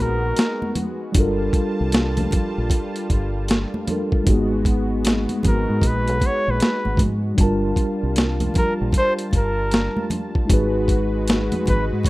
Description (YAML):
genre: R&B, neo-soul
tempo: 77 BPM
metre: 4/4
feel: swing 62% on 16ths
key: unclear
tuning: A4 = 441 Hz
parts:
  - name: warm flugelhorn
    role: melody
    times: 0.0-0.7, 5.5-11.9 s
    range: Bb4 to C#5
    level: -23 LUFS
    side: equal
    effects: slapback echo
  - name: mellow tine electric piano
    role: accompaniment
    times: 0.0-12.1 s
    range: G3 to A5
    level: -24 LUFS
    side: equal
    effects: fast stereo tremolo
  - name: warm analog pad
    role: sustained chords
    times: 0.0-12.1 s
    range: G3 to A5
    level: -29 LUFS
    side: equal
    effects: chorus
  - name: deep dub fingered electric bass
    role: bass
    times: 0.0-12.1 s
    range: G1 to Ab2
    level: -23 LUFS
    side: equal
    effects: none
  - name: boom bap sampler-style drum kit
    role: drums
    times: 0.4-12.1 s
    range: hi-hat, kick drum, snare drum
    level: -19 LUFS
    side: equal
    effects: none
  - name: congas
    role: percussion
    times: 0.4-12.1 s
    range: none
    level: -28 LUFS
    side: right 1 dB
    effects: none
room: little or no reverb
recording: rough home demo mix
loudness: -18 LUFS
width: side -19 dB against mid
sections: 0.0-12.1 A section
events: none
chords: 0.0 Abm9; 1.2 Gm9; 4.3 Abm9; 7.4 Gm9; 10.5 Abm7